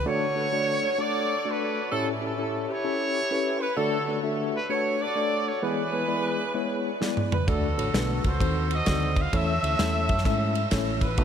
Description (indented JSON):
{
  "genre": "uptempo gospel",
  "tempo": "130 BPM",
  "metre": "4/4",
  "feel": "swing 65% on 8ths",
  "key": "A major",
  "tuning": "A4 = 440 Hz",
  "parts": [
    { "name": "clear horn section", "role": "melody", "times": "0.0-11.2 s", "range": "C#4 to F5", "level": "-27 LUFS", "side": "equal", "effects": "tape echo" },
    { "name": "hollow-body short-scale fingered electric bass", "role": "bass", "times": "0.0, 7.5-11.2 s", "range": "A1 to G#2", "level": "-28 LUFS", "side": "right 1 dB", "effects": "none" },
    { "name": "mellow tine electric piano", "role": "accompaniment", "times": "0.1-11.2 s", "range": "A2 to E5", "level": "-29 LUFS", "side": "left 2 dB", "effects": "medium stereo tremolo" },
    { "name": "modern studio drum kit", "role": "drums", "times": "7.0-11.2 s", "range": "kick drum, ride cymbal, snare drum, toms", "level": "-27 LUFS", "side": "right 1 dB", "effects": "none" }
  ],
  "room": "moderate huge ambient reverb, RT60 6.5 s",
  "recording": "dreamy mix soaked in reverb",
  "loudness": "-23 LUFS",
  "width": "side -8 dB against mid",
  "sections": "0.1-11.2 A section",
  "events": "drum fill 7.0-7.5",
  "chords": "0.1 D; 1.9 A7; 3.8 D; 5.6 E; 7.5 D; 8.4 D#dim7; 9.3 A",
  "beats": "| 0.06 0.52 0.99 1.45 | 1.92 2.38 2.84 3.31 | 3.77 4.23 4.70 5.16 | 5.62 6.09 6.55 7.01 | 7.48 7.94 8.40 8.87 | 9.33 9.79 10.26 10.72 | 11.18"
}